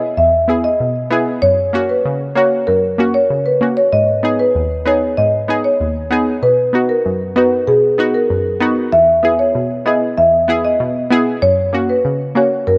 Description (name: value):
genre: dancehall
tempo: 96 BPM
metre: 4/4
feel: straight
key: unclear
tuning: A4 = 445 Hz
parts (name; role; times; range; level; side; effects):
- marimba with medium mallets; melody; 0.0-12.8 s; G#4 to E5; -17 LUFS; equal; tape echo
- analog pluck; accompaniment; 0.2-12.8 s; D#2 to G#4; -20 LUFS; equal; chorus
room: moderate lush hall reverb, RT60 2.6 s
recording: dark, warm production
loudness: -15 LUFS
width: mono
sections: 0.0-8.9 A section; 8.9-12.8 B section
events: none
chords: 0.0 E; 1.4 F#; 3.9 G#m; 6.4 B; 8.9 E; 11.4 F#